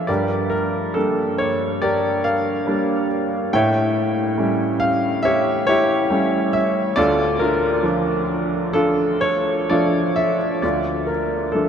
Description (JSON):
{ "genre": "classical, lyrical solo piano", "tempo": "63-72 BPM", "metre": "4/4", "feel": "rubato", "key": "D harmonic minor", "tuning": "A4 = 437 Hz", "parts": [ { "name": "clear baby grand piano", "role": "solo", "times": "0.0-11.7 s", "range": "D2 to G5", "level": "-17 LUFS", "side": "equal", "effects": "none" } ], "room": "wet huge ambient reverb, RT60 8.3 s", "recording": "in a vast, echoing space", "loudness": "-17 LUFS", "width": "side -8 dB against mid", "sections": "0.0-10.6 A section; 10.6-11.7 B section", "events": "none", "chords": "0.1 Gm; 3.5 A7; 7.0 Dm" }